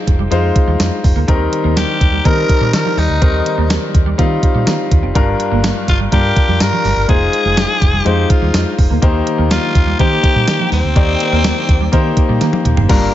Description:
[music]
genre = 1980s-style pop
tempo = 124 BPM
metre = 4/4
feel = straight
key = C minor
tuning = A4 = 441 Hz
[part]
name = clear baby grand piano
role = accompaniment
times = 0.0-13.1 s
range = G2 to D5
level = -18 LUFS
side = left 3 dB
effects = none
[part]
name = twelve-string electric guitar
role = riff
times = 0.1-13.0 s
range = F3 to C4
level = -24 LUFS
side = right 4 dB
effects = wide subtle chorus, ping-pong delay
[part]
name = vintage muted fingered electric bass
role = bass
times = 0.1-13.1 s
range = F1 to Eb3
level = -17 LUFS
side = equal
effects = none
[part]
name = clean 12-bit digital drum machine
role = drums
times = 0.1-13.0 s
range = crash cymbal, hi-hat, kick drum, snare drum, tambourine, toms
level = -14 LUFS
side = equal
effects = gated reverb
[part]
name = raspy tenor saxophone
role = melody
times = 1.8-12.4 s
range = C4 to Bb4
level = -19 LUFS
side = left 2 dB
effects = ping-pong delay
[sound]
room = light reverb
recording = nothing above 7.7 kHz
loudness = -11 LUFS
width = side -12 dB against mid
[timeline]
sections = 0.0-12.9 A section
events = drum fill 12.4-12.9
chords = 0.0 Fm7; 1.3 Cm7; 5.2 Gm7; 7.1 Fm7; 9.0 Cm7

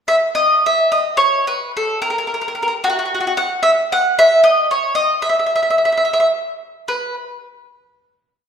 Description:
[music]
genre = italian folk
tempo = 74 BPM (dotted quarters)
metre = 6/8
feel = straight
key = unclear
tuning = A4 = 436 Hz
[part]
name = mandolin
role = solo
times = 0.1-7.1 s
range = F#4 to F#5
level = -14 LUFS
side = equal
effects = none
[sound]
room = wet recital hall reverb, RT60 1.4 s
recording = recorded in a church or concert hall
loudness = -14 LUFS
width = side -7 dB against mid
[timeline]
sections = 0.0-0.3 pickup bar; 0.3-6.9 A section; 6.9-8.5 final note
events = none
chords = none

